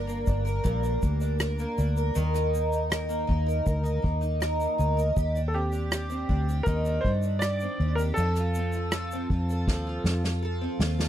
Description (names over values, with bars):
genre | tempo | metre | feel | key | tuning
acoustic pop | 80 BPM | 4/4 | straight | unclear | A4 = 440 Hz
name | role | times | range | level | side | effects
picked twelve-string acoustic guitar | accompaniment | 0.0-11.1 s | G2 to Bb4 | -30 LUFS | right 1 dB | double-tracked left and right
vintage muted fingered electric bass | bass | 0.0-11.1 s | G1 to G2 | -27 LUFS | equal | none
unplugged drum kit | drums | 0.1-11.1 s | kick drum, rim click, shaker, snare drum | -29 LUFS | equal | none
bright upright piano | melody | 5.5-10.4 s | G4 to D5 | -32 LUFS | equal | none
room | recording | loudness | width
little or no reverb | dry, close 1970s-style studio recording | -24 LUFS | side -11 dB against mid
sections
0.0-11.1 A section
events
drum fill 9.7-11.1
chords
0.0 Gm; 2.2 Eb5; 5.2 Cmadd9; 8.2 F